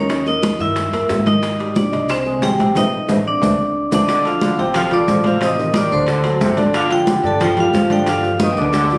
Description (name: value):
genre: latin, salsa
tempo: 181 BPM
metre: 4/4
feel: straight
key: unclear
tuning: A4 = 440 Hz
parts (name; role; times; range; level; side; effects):
- vibraphone with hard mallets; melody; 0.0-9.0 s; C4 to Eb6; -21 LUFS; equal; none
- clear grand piano; accompaniment; 0.0-9.0 s; C3 to Eb5; -23 LUFS; equal; none
- upright bass; bass; 0.0-9.0 s; G1 to Ab2; -27 LUFS; equal; none
- bongos; percussion; 0.1-9.0 s; none; -29 LUFS; equal; none
- congas; percussion; 0.1-9.0 s; none; -24 LUFS; equal; none
- maracas; percussion; 0.1-9.0 s; none; -40 LUFS; equal; none
- timbales; percussion; 0.1-8.9 s; none; -31 LUFS; equal; none
- bright trombone section; second line; 4.1-8.9 s; C3 to G3; -27 LUFS; equal; none
room: moderate studio reverb, RT60 0.8 s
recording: recorded on a phone in the room, studio reverb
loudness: -17 LUFS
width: mono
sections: 0.0-4.1 A section; 4.1-9.0 B section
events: drum fill 2.8-4.1, 8.4-9.0; band accent 2.8-4.1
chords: 0.1 Eb7b9; 1.4 Abmaj7; 2.8 Adim; 3.4 D5; 4.1 Dm7; 5.4 Am7b5; 6.1 D7; 6.7 G5